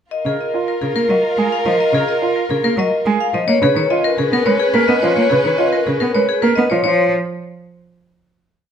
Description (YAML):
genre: classical, minimalist pattern music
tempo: 107 BPM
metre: 3/4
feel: straight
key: F# major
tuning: A4 = 441 Hz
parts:
  - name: vibraphone with hard mallets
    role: melody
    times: 0.1-7.1 s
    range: G#4 to E#5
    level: -18 LUFS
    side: left 6 dB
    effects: none
  - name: mellow wooden-headed alto flute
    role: second line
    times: 0.1-6.7 s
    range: A#4 to B4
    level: -22 LUFS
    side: right 3 dB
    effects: none
  - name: rich studio violin section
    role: sustained chords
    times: 0.1-6.7 s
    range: C#4 to B4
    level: -24 LUFS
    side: left 3 dB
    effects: none
  - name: rich cello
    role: accompaniment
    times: 0.3-7.1 s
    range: C#3 to B3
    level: -19 LUFS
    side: right 2 dB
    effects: none
  - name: bright concert grand piano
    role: arpeggios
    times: 0.3-7.1 s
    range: E#4 to B4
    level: -21 LUFS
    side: right 7 dB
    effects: none
room: moderate large studio reverb, RT60 0.9 s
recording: none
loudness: -14 LUFS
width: side -8 dB against mid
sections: 0.1-6.8 A section; 6.8-8.5 final chord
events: none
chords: 0.1 F#maj9 (rootless); 3.5 C#9; 6.8 N.C.